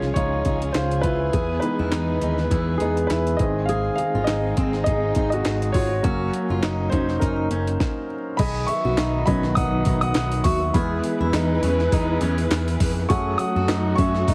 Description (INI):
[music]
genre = piano-driven pop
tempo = 102 BPM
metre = 4/4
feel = swing 56% on 16ths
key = B mixolydian from 8.4 s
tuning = A4 = 440 Hz
[part]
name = warm concert grand piano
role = accompaniment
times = 0.0-14.3 s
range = Eb3 to D#6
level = -26 LUFS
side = equal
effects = none
[part]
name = warm symphonic string section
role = sustained chords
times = 0.0-14.3 s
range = Db3 to B4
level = -32 LUFS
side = equal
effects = none
[part]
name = fingerpicked steel-string acoustic guitar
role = riff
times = 0.0-14.3 s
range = C4 to G#4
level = -31 LUFS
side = equal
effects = none
[part]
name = picked electric bass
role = bass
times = 0.0-14.3 s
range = F1 to F#2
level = -28 LUFS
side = equal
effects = none
[part]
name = jungle sampler-style drum kit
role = drums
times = 0.0-14.3 s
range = crash cymbal, handclaps, hi-hat, kick drum, snare drum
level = -28 LUFS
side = equal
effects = none
[sound]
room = light reverb, small room ambience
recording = heavily compressed radio sound, vinyl crackle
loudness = -22 LUFS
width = mono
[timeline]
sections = 0.0-8.4 A section; 8.4-14.3 B section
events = grand piano solo 0.0-8.4, 8.4-14.3; stop 7.8-8.4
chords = 0.0 Db; 1.3 E; 3.4 Ab; 6.0 Gb; 8.4 B; 10.7 E; 13.1 F#m